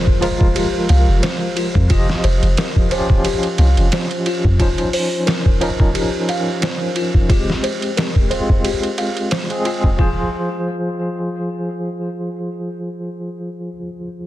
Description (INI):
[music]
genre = trip hop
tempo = 89 BPM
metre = 4/4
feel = swing 55% on 16ths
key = F minor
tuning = A4 = 441 Hz
[part]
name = barky tine electric piano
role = accompaniment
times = 0.0-14.3 s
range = F3 to Eb5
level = -22 LUFS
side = equal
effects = tremolo, vintage 12-bit sampler grit, tape echo
[part]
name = music box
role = arpeggios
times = 0.0-10.3 s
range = F4 to F5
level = -24 LUFS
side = left 3 dB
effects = low-pass filter, tape echo
[part]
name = impact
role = sound effects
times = 0.0-1.9 s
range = none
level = -31 LUFS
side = equal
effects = none
[part]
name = trip hop sampler-style drum kit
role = drums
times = 0.1-10.1 s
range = hi-hat, kick drum, ride cymbal, snare drum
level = -18 LUFS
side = equal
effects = none
[part]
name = soft 808-style bass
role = bass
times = 0.9-4.6 s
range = F1 to F2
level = -14 LUFS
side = equal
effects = none
[sound]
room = digital ambience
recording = dense, heavily limited modern master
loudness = -15 LUFS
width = side -14 dB against mid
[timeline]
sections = 0.0-10.0 A section; 10.0-12.7 B section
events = impact 0.0-1.9; filter sweep on music box 0.0-10.0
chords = 0.0 Fm; 1.9 Ebadd9/F; 7.3 Abmaj7; 10.0 Fm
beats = 0.55 1.22 | 1.90 2.57 3.25 3.92 | 4.59 5.27 5.94 6.62 | 7.29 7.97 8.64 9.31 | 9.99 10.66 11.34 12.01